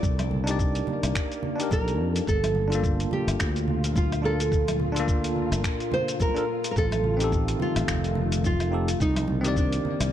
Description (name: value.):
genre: sunset chillout.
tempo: 107 BPM.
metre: 4/4.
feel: swing 57% on 16ths.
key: G minor.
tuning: A4 = 439 Hz.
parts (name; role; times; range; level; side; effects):
nylon-string guitar; melody; 0.0-10.1 s; D4 to D5; -29 LUFS; right 1 dB; ping-pong delay.
soft string machine; sustained chords; 0.0-10.1 s; Bb2 to F4; -34 LUFS; left 1 dB; ensemble chorus.
sustaining fretless electric bass; bass; 0.0-10.1 s; F1 to F2; -27 LUFS; equal; none.
dusty soul sampler-style drum kit; drums; 0.0-10.1 s; finger snaps, hi-hat, shaker, woodblock; -34 LUFS; left 2 dB; studio reverb.
electronic kick drum; drums; 0.0-9.7 s; none; -27 LUFS; equal; studio reverb.
congas; percussion; 0.2-10.0 s; none; -35 LUFS; right 2 dB; none.
bell-like tine electric piano; accompaniment; 0.4-10.1 s; Eb3 to D5; -31 LUFS; left 1 dB; auto-pan, ping-pong delay.
room: light reverb.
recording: dark, warm production.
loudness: -23 LUFS.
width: side -11 dB against mid.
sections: 0.0-10.1 A section.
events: none.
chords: 0.0 Cm9; 2.3 Gm9; 6.8 F7/A; 9.0 Cm9.